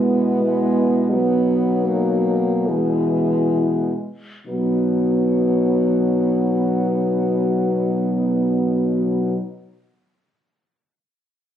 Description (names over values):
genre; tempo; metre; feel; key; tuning
classical, lyrical piece for horn quartet; 32-46 BPM; 3/4; rubato; B major; A4 = 440 Hz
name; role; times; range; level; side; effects
warm French horn; melody; 0.0-9.3 s; D#4 to E4; -29 LUFS; left 11 dB; none
warm French horn; second line; 0.0-9.4 s; G#3 to B3; -21 LUFS; right 4 dB; none
mellow French horn; accompaniment; 0.0-9.4 s; E3 to G#3; -22 LUFS; left 4 dB; none
mellow French horn; bass; 0.0-9.3 s; B2; -24 LUFS; right 1 dB; none
room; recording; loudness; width
moderate stone room reverb, RT60 1.0 s; recorded on a phone in the room, club reverb, compression; -17 LUFS; side -10 dB against mid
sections
0.0-4.5 A section; 4.5-9.8 B section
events
slowing down 0.0-4.5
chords
0.0 E/B; 4.5 B